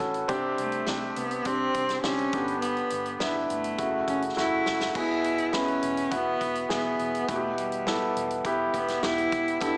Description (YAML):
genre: piano-driven pop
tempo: 103 BPM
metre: 4/4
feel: straight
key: unclear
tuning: A4 = 440 Hz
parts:
  - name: warm concert grand piano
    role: accompaniment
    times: 0.0-9.8 s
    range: G2 to B4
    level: -30 LUFS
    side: equal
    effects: none
  - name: vintage muted fingered electric bass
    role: bass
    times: 0.0-9.8 s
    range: E1 to C2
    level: -50 LUFS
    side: equal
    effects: none
  - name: natural country drum kit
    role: drums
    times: 0.0-9.8 s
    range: crash cymbal, hi-hat, kick drum, snare drum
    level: -37 LUFS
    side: equal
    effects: none
  - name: rich cello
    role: melody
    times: 0.6-9.8 s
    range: G3 to E4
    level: -32 LUFS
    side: equal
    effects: none
  - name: tambourine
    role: percussion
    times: 9.6-9.7 s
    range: none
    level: -45 LUFS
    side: equal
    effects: none
room: moderate concert hall reverb, RT60 2.1 s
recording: small speaker sound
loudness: -28 LUFS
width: mono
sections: 0.0-5.0 A section; 5.0-9.8 B section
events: drum fill 4.4-5.0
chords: 0.3 Csus2; 2.3 G; 3.8 F#m7; 5.0 E; 7.3 Em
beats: | 0.29 0.87 1.45 2.04 | 2.62 3.20 3.79 4.37 | 4.95 5.53 6.12 6.70 | 7.28 7.86 8.45 9.03 | 9.61